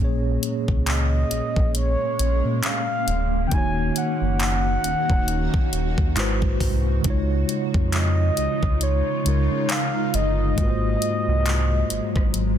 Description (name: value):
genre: contemporary R&B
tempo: 68 BPM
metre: 4/4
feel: swing 58% on 16ths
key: Bb minor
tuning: A4 = 439 Hz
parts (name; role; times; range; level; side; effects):
- mellow tine electric piano; accompaniment; 0.0-12.6 s; Ab2 to Db5; -26 LUFS; equal; medium stereo tremolo
- granular cloud pad; sustained chords; 0.0-12.6 s; Db3 to Gb4; -30 LUFS; left 1 dB; built-in reverb, phaser
- sub bass with octave; bass; 0.0-12.6 s; D1 to Db3; -23 LUFS; equal; none
- smooth R&B drum kit; drums; 0.4-12.6 s; handclaps, hi-hat, kick drum, rim click; -24 LUFS; equal; none
- mellow horn-like synth lead; melody; 0.9-12.6 s; Db5 to Ab5; -27 LUFS; equal; chorus
room: little or no reverb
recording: dense, heavily limited modern master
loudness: -20 LUFS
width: side -9 dB against mid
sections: 0.0-12.6 A section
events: none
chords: 0.0 Bbm7; 3.5 Ebm7; 6.2 Ab7alt; 7.0 Dbadd9; 10.6 Ab13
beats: 0.87 1.75 2.63 | 3.52 4.40 5.28 6.16 | 7.05 7.93 8.81 9.69 | 10.57 11.46 12.34